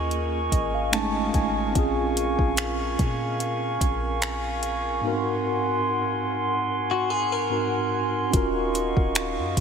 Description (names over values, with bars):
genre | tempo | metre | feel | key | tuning
contemporary R&B | 73 BPM | 4/4 | swing 54% on 16ths | unclear | A4 = 440 Hz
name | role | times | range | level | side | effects
mellow tine electric piano | accompaniment | 0.0-9.6 s | Ab2 to A5 | -27 LUFS | equal | medium stereo tremolo
glass harmonica | sustained chords | 0.0-9.6 s | Eb4 to Db6 | -27 LUFS | right 2 dB | none
clean 808-style bass | bass | 0.0-9.6 s | Eb1 to Bb2 | -31 LUFS | equal | none
smooth R&B drum kit | drums | 0.1-9.6 s | finger snaps, hi-hat, kick drum | -27 LUFS | equal | none
direct-recorded clean electric guitar | arpeggios | 6.9-8.3 s | Gb4 to Bb4 | -30 LUFS | left 7 dB | lush chorus, diffuse ambient delay
room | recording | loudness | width
wet huge ambient reverb, RT60 8.3 s | dreamy mix soaked in reverb | -22 LUFS | side -7 dB against mid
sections
0.0-8.3 A section; 8.3-9.6 B section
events
tine electric piano fill 0.1-1.8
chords
0.0 Eb7sus4; 0.9 F7alt; 1.8 Bbm7; 5.0 Ab9; 8.3 Ebm9